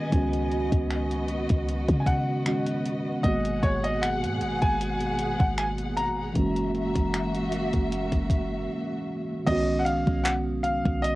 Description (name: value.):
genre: contemporary R&B.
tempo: 77 BPM.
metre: 4/4.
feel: swing 54% on 16ths.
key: G# minor.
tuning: A4 = 440 Hz.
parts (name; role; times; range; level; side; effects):
clear baby grand piano; melody; 0.0-11.2 s; C#5 to A#5; -30 LUFS; equal; cassette tape.
muted felt-like synth keys; accompaniment; 0.0-11.2 s; D#3 to F#4; -28 LUFS; right 1 dB; chorus, cassette tape.
dark symphonic string section; sustained chords; 0.0-9.4 s; B2 to F#5; -33 LUFS; equal; sidechain pumping, cassette tape.
clean 808-style bass; bass; 0.0-11.2 s; F#1 to D#3; -30 LUFS; equal; none.
clean 12-bit digital drum machine; drums; 0.1-11.2 s; crash cymbal, finger snaps, handclaps, hi-hat, kick drum; -28 LUFS; equal; none.
room: light reverb.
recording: home recording on cassette.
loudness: -24 LUFS.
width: side -18 dB against mid.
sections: 0.0-9.5 A section; 9.5-11.2 B section.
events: break 8.7-9.5.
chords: 0.1 C#9sus4; 3.2 G#m7; 6.4 F#7; 9.5 B6.